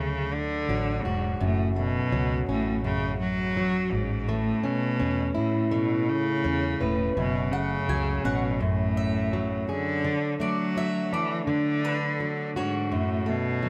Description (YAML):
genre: pop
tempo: 84 BPM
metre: 4/4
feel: straight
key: unclear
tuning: A4 = 440 Hz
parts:
  - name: rich cello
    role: melody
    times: 0.0-13.7 s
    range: G#2 to F#3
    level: -30 LUFS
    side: equal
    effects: tape echo
  - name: fingerpicked plugged-in steel-string acoustic guitar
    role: accompaniment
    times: 0.0-13.7 s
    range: F#2 to B4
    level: -30 LUFS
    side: equal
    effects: none
  - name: vintage muted fingered electric bass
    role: bass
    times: 0.0-9.6 s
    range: E1 to A2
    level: -33 LUFS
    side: equal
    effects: none
  - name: mandolin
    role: arpeggios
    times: 7.5-12.7 s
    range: B4 to G#5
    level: -36 LUFS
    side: equal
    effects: none
room: moderate studio reverb, RT60 0.5 s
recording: none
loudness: -27 LUFS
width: mono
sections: 0.0-13.7 A section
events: none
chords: 0.0 D; 1.4 F#m; 3.9 Aadd9; 7.2 F#madd9; 10.0 D; 12.9 F#m